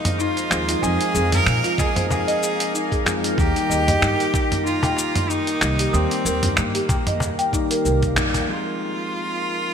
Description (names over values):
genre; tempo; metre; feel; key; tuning
organic downtempo; 94 BPM; 4/4; swing 56% on 16ths; F minor; A4 = 440 Hz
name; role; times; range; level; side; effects
bright cello; melody; 0.0-9.7 s; Bb3 to Bb4; -24 LUFS; right 1 dB; ping-pong delay
bell-like tine electric piano; accompaniment; 0.0-9.7 s; Eb3 to Ab4; -28 LUFS; left 2 dB; lush chorus, sidechain pumping, low-pass filter, ping-pong delay
bowed-like drone; sustained chords; 0.0-9.7 s; C4 to G5; -30 LUFS; equal; built-in reverb, sidechain pumping
folk marimba with soft mallets; arpeggios; 0.0-8.3 s; Eb4 to Eb6; -26 LUFS; equal; ping-pong delay
drifting glass-harmonics texture; texture; 0.0-9.7 s; Bb3 to Bb4; -34 LUFS; equal; chorus, built-in reverb
dusty soul sampler-style drum kit; drums; 0.1-8.5 s; cabasa, finger snaps, hi-hat, toms; -24 LUFS; right 1 dB; none
upright bass; bass; 0.5-8.4 s; Bb1 to Bb2; -23 LUFS; equal; none
cajon; percussion; 0.5-8.5 s; none; -28 LUFS; left 2 dB; none
electronic kick drum; drums; 1.8-8.1 s; none; -23 LUFS; right 1 dB; none
room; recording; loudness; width
moderate lush hall reverb, RT60 2.7 s; bright 1980s-style digital production; -18 LUFS; side -7 dB against mid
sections
0.0-8.5 A section; 8.5-9.7 B section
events
band accent 8.2-8.5; filter sweep on tine electric piano 8.5-9.7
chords
0.0 Fm7; 3.4 Eb; 8.5 Fm7